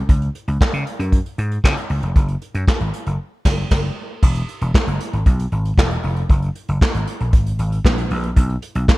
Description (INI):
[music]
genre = early-eighties boogie funk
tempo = 116 BPM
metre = 4/4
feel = straight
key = unclear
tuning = A4 = 445 Hz
[part]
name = vintage slap bass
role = bass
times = 0.1-8.8 s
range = E1 to C#3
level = -20 LUFS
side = equal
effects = none
[part]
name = vintage brush drum kit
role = drums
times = 0.1-9.0 s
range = crash cymbal, handclaps, hi-hat, kick drum, snare drum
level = -17 LUFS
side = equal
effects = gated reverb
[sound]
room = little or no reverb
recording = none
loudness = -17 LUFS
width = side -19 dB against mid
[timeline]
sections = 0.0-4.2 A section; 4.2-9.0 B section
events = band accent 3.2-4.2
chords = none